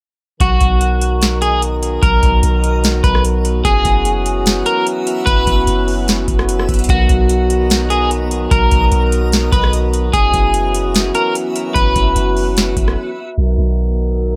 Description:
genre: hip hop, atmospheric cloud-rap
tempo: 148 BPM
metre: 4/4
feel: half-time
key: B major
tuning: A4 = 438 Hz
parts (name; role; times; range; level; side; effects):
- electric guitar at the edge of break-up; melody; 0.4-13.3 s; F#4 to B4; -20 LUFS; equal; low-pass filter, delay
- mellow French horn section; sustained chords; 0.4-14.4 s; D#3 to A#4; -23 LUFS; equal; sidechain pumping
- soft 808-style bass; bass; 0.4-14.4 s; F#1 to B1; -19 LUFS; equal; none
- booming analog drum machine; drums; 0.4-13.0 s; hi-hat, kick drum, rim click, snare drum; -19 LUFS; equal; overdrive
- backwards swelling texture; texture; 1.5-14.4 s; B3 to E5; -31 LUFS; equal; built-in reverb
room: light reverb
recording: low-pass filter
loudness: -15 LUFS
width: mono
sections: 0.4-13.4 A section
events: break 13.0-13.4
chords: 0.4 Bmaj7; 3.6 F#7sus4; 6.9 Bmaj7; 10.1 F#7sus4; 13.4 Bmaj7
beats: | 0.41 0.81 1.22 1.62 | 2.03 2.43 2.84 3.24 | 3.65 4.05 4.46 4.86 | 5.27 5.67 6.08 6.49 | 6.89 7.30 7.70 8.11 | 8.51 8.92 9.32 9.73 | 10.13 10.54 10.95 11.35 | 11.76 12.16 12.57 12.97 | 13.38 13.78 14.19

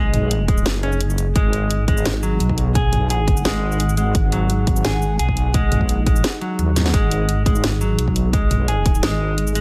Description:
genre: half-time drum and bass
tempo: 172 BPM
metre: 4/4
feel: half-time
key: G# minor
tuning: A4 = 440 Hz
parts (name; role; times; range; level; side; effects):
- deep dark ambient pad; sustained chords; 0.1-9.6 s; D#4 to F#5; -31 LUFS; equal; chorus, built-in reverb, sidechain pumping
- clean electric guitar; arpeggios; 0.0-9.6 s; F#3 to G#4; -27 LUFS; equal; dub echo
- deep soft wobble bass; bass; 0.0-9.6 s; F#1 to D#2; -22 LUFS; equal; chorus, tube saturation
- drum and bass drum kit; drums; 0.1-9.6 s; hi-hat, shaker, snare drum, toms; -26 LUFS; equal; small room ambience
- electronic kick drum; drums; 0.5-8.9 s; none; -22 LUFS; equal; small room ambience
room: light reverb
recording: none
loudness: -19 LUFS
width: mono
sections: 0.0-9.6 A section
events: drum fill 6.8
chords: 0.0 G#5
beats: 0.31 0.66 1.01 | 1.36 1.71 2.05 2.40 | 2.75 3.10 3.45 3.80 | 4.15 4.50 4.84 5.19 | 5.54 5.89 6.24 6.59 | 6.94 7.29 7.63 7.98 | 8.33 8.68 9.03 9.38

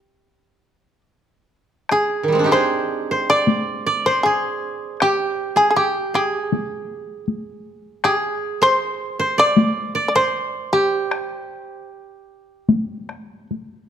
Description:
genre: japanese traditional, Japanese chamber music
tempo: 78 BPM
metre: 4/4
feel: uneven beats, rubato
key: G miyako bushi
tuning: A4 = 440 Hz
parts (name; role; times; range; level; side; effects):
- shamisen; melody; 0.0-13.5 s; G4 to D5; -19 LUFS; left 2 dB; none
- koto; second line; 0.0-13.5 s; Eb3 to D5; -21 LUFS; right 3 dB; none
- taiko ensemble; percussion; 1.9-13.7 s; none; -20 LUFS; left 3 dB; none
room: moderate recital hall reverb, RT60 1.8 s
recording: close, detailed microphones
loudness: -17 LUFS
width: side -9 dB against mid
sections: 0.0-1.9 A section; 1.9-13.9 B section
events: none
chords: none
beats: 0.22 1.05 | 1.88 2.68 3.46 4.23 | 5.00 5.76 6.52 7.28 | 8.05 8.81 9.58 10.35 | 11.11 11.89 12.69 13.51

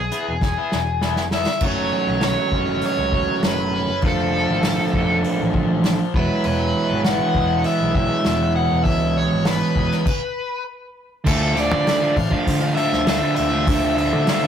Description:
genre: indie rock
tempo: 100 BPM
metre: 4/4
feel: straight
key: unclear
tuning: A4 = 440 Hz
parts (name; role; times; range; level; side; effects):
- overdriven electric guitar; melody; 0.0-14.5 s; G#4 to F#5; -23 LUFS; left 2 dB; analog delay
- overdriven picked electric bass; bass; 0.0-14.5 s; E1 to D3; -25 LUFS; left 1 dB; none
- fuzz guitar; riff; 0.1-14.5 s; F3 to G#4; -27 LUFS; left 1 dB; distortion
- unplugged drum kit; drums; 0.1-14.4 s; crash cymbal, hi-hat, kick drum, snare drum; -23 LUFS; equal; none
- sludgy distorted guitar; riff; 1.6-14.5 s; D3 to F#4; -22 LUFS; right 3 dB; overdrive
room: moderate studio reverb, RT60 0.6 s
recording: rough rehearsal-room recording, warm saturation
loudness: -17 LUFS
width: side -8 dB against mid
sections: 0.0-1.6 A section; 1.6-11.3 B section; 11.3-14.5 C section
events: drum fill 0.4-1.6; stop 10.1-11.3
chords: 0.0 E; 1.6 F#m; 4.0 Dm/F; 6.1 Eadd9; 11.3 Dmadd9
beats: 0.41 1.02 | 1.62 2.23 2.83 3.43 | 4.03 4.63 5.24 5.84 | 6.44 7.04 7.64 8.25 | 8.85 9.45 10.06 10.66 | 11.26 11.87 12.47 13.07 | 13.68 14.28

